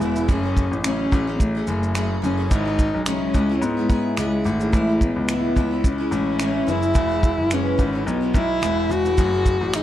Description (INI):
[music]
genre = acoustic pop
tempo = 108 BPM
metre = 4/4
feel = swing 55% on 16ths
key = unclear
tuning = A4 = 441 Hz
[part]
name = dark cello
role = melody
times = 0.0-9.8 s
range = G#3 to F#4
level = -23 LUFS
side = left 2 dB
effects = none
[part]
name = picked steel-string acoustic guitar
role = accompaniment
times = 0.0-9.8 s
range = E2 to G#4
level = -25 LUFS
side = right 1 dB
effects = double-tracked left and right
[part]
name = bright concert grand piano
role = bass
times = 0.0-9.8 s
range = E1 to G#2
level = -25 LUFS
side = equal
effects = none
[part]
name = cloth-damped thuddy drum kit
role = drums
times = 0.0-9.8 s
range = finger snaps, kick drum, shaker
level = -21 LUFS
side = right 1 dB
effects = none
[sound]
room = little or no reverb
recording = dry, close 1970s-style studio recording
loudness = -18 LUFS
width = side -12 dB against mid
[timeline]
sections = 0.0-9.8 A section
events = none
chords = 0.3 F#madd9; 2.5 C#m/G#; 4.7 Amaj7; 7.0 E; 9.2 F#madd9